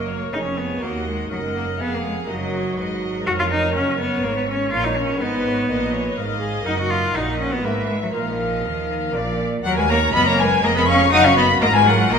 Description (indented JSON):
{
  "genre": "classical, baroque-style concerto movement with solo episodes",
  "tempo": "122 BPM",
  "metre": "3/4",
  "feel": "straight",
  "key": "Eb minor from 3.7 s",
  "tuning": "A4 = 440 Hz",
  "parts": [
    { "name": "rich cello", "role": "melody", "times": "0.0-12.2 s", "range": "F3 to Gb4", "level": "-22 LUFS", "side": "left 1 dB", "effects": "none" },
    { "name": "rich chamber violin section", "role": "melody", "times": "0.0-12.2 s", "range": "A#4 to Eb6", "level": "-24 LUFS", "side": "left 4 dB", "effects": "none" },
    { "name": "rich chamber violin section", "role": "second line", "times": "0.0-12.2 s", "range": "Bb4 to Gb5", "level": "-26 LUFS", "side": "left 2 dB", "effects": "none" },
    { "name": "lute", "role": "accompaniment", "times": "0.0-12.2 s", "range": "D#2 to Bb4", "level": "-31 LUFS", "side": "right 1 dB", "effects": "none" },
    { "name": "rich chamber viola section", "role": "accompaniment", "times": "0.0-12.2 s", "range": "Eb4 to D5", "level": "-28 LUFS", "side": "left 1 dB", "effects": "none" },
    { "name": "dark chamber double bass section", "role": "bass", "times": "0.0-12.2 s", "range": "E#1 to D#2", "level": "-28 LUFS", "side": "right 4 dB", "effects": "none" },
    { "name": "rich studio cello section", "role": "bass", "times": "0.0-12.2 s", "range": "D#2 to Eb3", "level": "-28 LUFS", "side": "right 4 dB", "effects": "none" }
  ],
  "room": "wet recital hall reverb, RT60 1.8 s",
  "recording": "minimal, uncompressed stereo recording",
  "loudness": "-18 LUFS",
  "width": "side -6 dB against mid",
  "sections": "0.0-9.7 A section; 9.7-12.2 B section",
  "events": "none",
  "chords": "0.0 F#; 0.8 D#m; 3.7 Gb; 5.2 Abm; 6.7 Ebm/Gb; 7.6 E/G#; 8.1 Bbsus4; 9.2 Bb; 9.7 Ebm; 11.1 Ebm/Gb",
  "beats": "0.33 | 0.82 1.31 1.80 | 2.29 2.78 3.26 | 3.75 4.23 4.72 | 5.21 5.69 6.17 | 6.66 7.15 7.64 | 8.14 8.65 9.15 | 9.65 10.15 10.64 | 11.13 11.62 12.12"
}